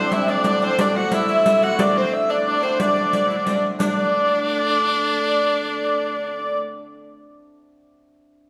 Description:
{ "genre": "medieval dance", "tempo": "119 BPM (dotted quarters)", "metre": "6/8", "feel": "straight", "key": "D mixolydian", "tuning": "A4 = 440 Hz", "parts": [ { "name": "dark hurdy-gurdy", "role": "melody", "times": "0.0-6.6 s", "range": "C5 to F#5", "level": "-22 LUFS", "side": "equal", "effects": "none" }, { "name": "edgy shawm", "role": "second line", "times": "0.0-6.6 s", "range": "C4 to F#4", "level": "-30 LUFS", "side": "equal", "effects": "none" }, { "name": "hammered dulcimer", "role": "second line", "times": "0.0-7.5 s", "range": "C4 to F#4", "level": "-30 LUFS", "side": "equal", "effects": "none" }, { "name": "rich hurdy-gurdy", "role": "drone", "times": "0.0-6.6 s", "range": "D3 to A3", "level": "-32 LUFS", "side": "equal", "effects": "none" }, { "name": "riq", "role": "percussion", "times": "0.1-4.0 s", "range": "none", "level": "-27 LUFS", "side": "equal", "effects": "none" } ], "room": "wet recital hall reverb, RT60 1.6 s", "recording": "none", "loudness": "-20 LUFS", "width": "mono", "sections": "0.0-3.8 A section; 3.8-5.8 B section", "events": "none", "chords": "none" }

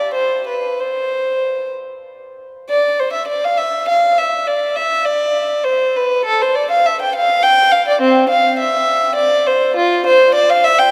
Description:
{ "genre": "classical, baroque-style suite movement for unaccompanied violin", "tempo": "61-71 BPM (dotted quarters)", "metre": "6/8", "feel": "rubato", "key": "unclear", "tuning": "A4 = 440 Hz", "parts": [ { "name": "rich violin", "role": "solo", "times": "0.0-10.9 s", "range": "C4 to G5", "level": "-15 LUFS", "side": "equal", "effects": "none" } ], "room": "wet cathedral reverb, RT60 5.2 s", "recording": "none", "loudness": "-15 LUFS", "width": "mono", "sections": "0.0-2.7 A section; 2.7-10.9 A section", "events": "none", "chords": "none" }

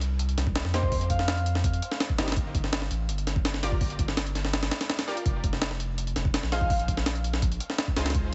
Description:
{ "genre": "drum and bass, jungle", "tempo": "166 BPM", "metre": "4/4", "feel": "straight", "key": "C minor", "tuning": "A4 = 440 Hz", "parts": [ { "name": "soft dub sub bass", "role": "bass", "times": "0.0-8.3 s", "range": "F1 to F2", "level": "-31 LUFS", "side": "equal", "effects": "none" }, { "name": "jungle sampler-style drum kit", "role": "drums", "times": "0.0-8.2 s", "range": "hi-hat, kick drum, snare drum", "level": "-30 LUFS", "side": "equal", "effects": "none" }, { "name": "breathy flute-like synth lead", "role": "melody", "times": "0.7-1.5, 6.5-6.7 s", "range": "C5 to F5", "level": "-36 LUFS", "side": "equal", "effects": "chorus, dub echo" }, { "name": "orchestra-hit-like synth stab", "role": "stabs", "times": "0.7-8.0 s", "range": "Bb3 to D5", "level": "-39 LUFS", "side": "equal", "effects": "built-in reverb, dub echo" } ], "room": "light reverb", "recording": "heavily compressed radio sound, nothing above 8.0 kHz", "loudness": "-28 LUFS", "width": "mono", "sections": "0.0-8.3 A section", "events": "none", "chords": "0.0 Cm7; 2.4 N.C." }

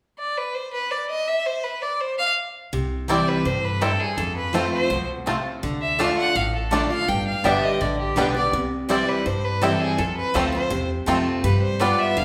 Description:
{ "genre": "bluegrass", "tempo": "165 BPM", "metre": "4/4", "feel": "straight", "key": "C major", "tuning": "A4 = 440 Hz", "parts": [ { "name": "rich fiddle", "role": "melody", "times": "0.2-12.2 s", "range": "G4 to G5", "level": "-26 LUFS", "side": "equal", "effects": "none" }, { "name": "picked steel-string acoustic guitar", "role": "accompaniment", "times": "2.7-12.2 s", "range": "F2 to G4", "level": "-27 LUFS", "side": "equal", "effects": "none" }, { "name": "upright bass", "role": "bass", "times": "2.7-12.2 s", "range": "G1 to G2", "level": "-30 LUFS", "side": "equal", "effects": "none" }, { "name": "bluegrass banjo", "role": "arpeggios", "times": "3.1-11.9 s", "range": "G3 to F4", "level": "-30 LUFS", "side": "equal", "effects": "none" }, { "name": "mandolin", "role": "stabs", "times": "3.1-11.9 s", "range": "A3 to A5", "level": "-32 LUFS", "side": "equal", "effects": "none" } ], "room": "wet large studio reverb, RT60 1.4 s", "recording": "band playing live in one room", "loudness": "-23 LUFS", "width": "mono", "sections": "0.0-2.7 A section; 2.7-12.2 B section", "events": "none", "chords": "0.0 N.C.; 2.7 C; 4.2 F; 5.6 Dm; 7.1 G; 8.5 C; 10.0 F; 11.4 G7" }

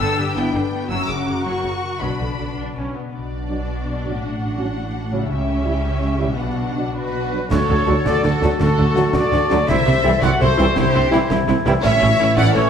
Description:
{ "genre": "cinematic, heroic adventure film score", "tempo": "110 BPM (dotted quarters)", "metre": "6/8", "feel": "straight", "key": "B minor, D major from 7.5 s", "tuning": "A4 = 441 Hz", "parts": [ { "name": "warm symphonic violin section", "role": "melody", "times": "0.0-12.7 s", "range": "F#4 to E6", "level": "-27 LUFS", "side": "left 5 dB", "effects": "none" }, { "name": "warm symphonic violin section", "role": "second line", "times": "0.0-12.7 s", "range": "F#4 to G5", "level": "-29 LUFS", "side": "left 2 dB", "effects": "none" }, { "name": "rich symphonic viola section", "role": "accompaniment", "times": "0.0-12.6 s", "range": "C#3 to F#4", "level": "-28 LUFS", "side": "right 2 dB", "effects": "none" }, { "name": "concert harp", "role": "arpeggios", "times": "0.0-12.7 s", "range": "F#2 to E5", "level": "-26 LUFS", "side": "left 8 dB", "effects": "none" }, { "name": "dark symphonic cello section", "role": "bass", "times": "0.0-12.6 s", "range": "A2 to A4", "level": "-25 LUFS", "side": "right 2 dB", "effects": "none" }, { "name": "warm studio double bass section", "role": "bass", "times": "0.0-12.6 s", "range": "F#1 to D2", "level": "-24 LUFS", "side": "right 3 dB", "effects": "none" }, { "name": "dark trombone section", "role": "sustained chords", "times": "3.5-12.7 s", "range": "D3 to E4", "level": "-27 LUFS", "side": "right 3 dB", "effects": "none" }, { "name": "hollow small flute group", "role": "second line", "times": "7.0-12.7 s", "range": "A4 to F#5", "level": "-25 LUFS", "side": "equal", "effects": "none" }, { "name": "mellow trumpet section", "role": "stabs", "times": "7.0-12.7 s", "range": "A4 to F#5", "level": "-22 LUFS", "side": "right 1 dB", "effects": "none" }, { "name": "warm clarinet", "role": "second line", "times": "7.5-12.7 s", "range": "C#4 to A4", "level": "-26 LUFS", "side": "left 1 dB", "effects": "none" }, { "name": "warm tuba", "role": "bass", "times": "7.5-12.6 s", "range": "A1 to D2", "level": "-26 LUFS", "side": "right 2 dB", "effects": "none" }, { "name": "concert snare drum, clash cymbals and concert bass drum", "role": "drums", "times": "7.5-12.7 s", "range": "none", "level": "-27 LUFS", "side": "equal", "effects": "none" }, { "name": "mellow French horn section", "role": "sustained chords", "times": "7.9-12.7 s", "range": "A3 to F#4", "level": "-26 LUFS", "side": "left 4 dB", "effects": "none" } ], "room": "moderate recital hall reverb, RT60 1.3 s", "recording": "none", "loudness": "-16 LUFS", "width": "side -8 dB against mid", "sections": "0.0-3.1 A section; 3.1-7.5 B section; 7.5-12.7 C section", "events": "none", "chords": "0.0 G; 0.9 F#; 2.0 Bm; 4.2 F#m/A; 5.3 C#dim; 6.4 Bm; 7.5 D; 9.7 C; 11.8 A" }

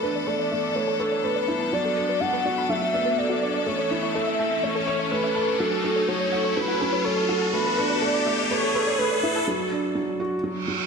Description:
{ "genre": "piano and strings electronica", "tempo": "124 BPM", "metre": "4/4", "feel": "straight", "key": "unclear", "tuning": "A4 = 440 Hz", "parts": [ { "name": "warm velvety synth lead", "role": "melody", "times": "0.0-9.5 s", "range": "A4 to F#5", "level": "-26 LUFS", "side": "equal", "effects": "chorus" }, { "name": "bright chamber string section", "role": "sustained chords", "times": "0.0-9.5 s", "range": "E3 to A4", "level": "-29 LUFS", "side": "left 2 dB", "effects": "none" }, { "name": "soft round pluck", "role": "arpeggios", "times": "0.0-9.4 s", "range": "F#4 to E6", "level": "-33 LUFS", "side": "left 2 dB", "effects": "chorus, ping-pong delay" }, { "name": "felt-muted upright piano", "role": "riff", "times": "0.0-10.9 s", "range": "F#3 to C#5", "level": "-27 LUFS", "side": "right 2 dB", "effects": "ping-pong delay" }, { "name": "riser and reverse cymbal", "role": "sound effects", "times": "0.0-10.9 s", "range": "none", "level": "-30 LUFS", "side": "equal", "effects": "none" } ], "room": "wet scoring stage reverb, RT60 1.6 s", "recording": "none", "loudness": "-22 LUFS", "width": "side -5 dB against mid", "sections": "0.0-10.9 A section", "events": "build-up 0.0-10.9; riser 0.0-9.5; break 9.5-10.9; reverse cymbal 10.6", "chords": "0.0 E7sus4; 1.7 Bm7; 3.7 A; 5.6 F#m; 7.5 E7sus4; 9.5 Bm (rootless)" }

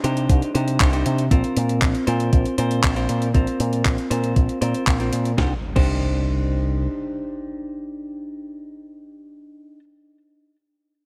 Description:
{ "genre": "italo disco", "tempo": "118 BPM", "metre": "4/4", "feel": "straight", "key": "C minor", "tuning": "A4 = 442 Hz", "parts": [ { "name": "clean electric guitar", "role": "stabs", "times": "0.0-9.8 s", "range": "C4 to C5", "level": "-28 LUFS", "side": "equal", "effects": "vintage 12-bit sampler grit, low-pass filter, tape echo" }, { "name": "picked electric bass with an envelope filter", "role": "bass", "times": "0.0-6.9 s", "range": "Bb1 to C3", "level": "-25 LUFS", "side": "equal", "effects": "tube saturation, tape echo" }, { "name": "clean 12-bit digital drum machine", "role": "drums", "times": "0.0-5.9 s", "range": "crash cymbal, handclaps, hi-hat, snare drum", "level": "-30 LUFS", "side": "equal", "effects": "none" }, { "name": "downlifter and impact", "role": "sound effects", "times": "0.0-1.3, 5.5-9.4 s", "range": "none", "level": "-38 LUFS", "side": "equal", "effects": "none" }, { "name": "electronic kick drum", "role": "drums", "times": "0.3-5.9 s", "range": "none", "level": "-21 LUFS", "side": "equal", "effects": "none" } ], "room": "light reverb", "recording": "none", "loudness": "-21 LUFS", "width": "mono", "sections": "0.0-5.4 A section; 5.4-9.4 B section", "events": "none", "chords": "0.0 Cmadd9; 1.3 Bbsus2; 5.4 Cmadd9" }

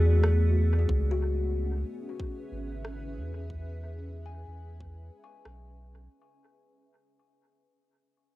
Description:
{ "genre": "ambient dub", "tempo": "92 BPM", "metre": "4/4", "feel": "swing 60% on 16ths", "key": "unclear", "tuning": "A4 = 440 Hz", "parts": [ { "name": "granular cloud pad", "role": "sustained chords", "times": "0.0-6.1 s", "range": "A3 to E5", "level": "-38 LUFS", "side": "right 1 dB", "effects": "built-in reverb, cassette tape" }, { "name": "kalimba", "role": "arpeggios", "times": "0.0-6.9 s", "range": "F#4 to C#6", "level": "-35 LUFS", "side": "left 5 dB", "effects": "low-pass filter, cassette tape, analog delay" }, { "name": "warm sub bass", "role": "bass", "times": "0.0-6.1 s", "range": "G#1 to E2", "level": "-27 LUFS", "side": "equal", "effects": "none" }, { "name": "electronic rim click", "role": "drums", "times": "0.2-5.6 s", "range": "none", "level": "-34 LUFS", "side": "equal", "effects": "cassette tape, dub echo" }, { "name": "electronic kick drum", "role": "drums", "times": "0.9-5.0 s", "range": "none", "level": "-35 LUFS", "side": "equal", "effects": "cassette tape" } ], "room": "little or no reverb", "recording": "home recording on cassette", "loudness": "-27 LUFS", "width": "side -18 dB against mid", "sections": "0.0-6.1 A section", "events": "fade-out 0.0-6.1; filter sweep on kalimba 0.0-6.1", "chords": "0.0 Bm7; 0.9 C#m7" }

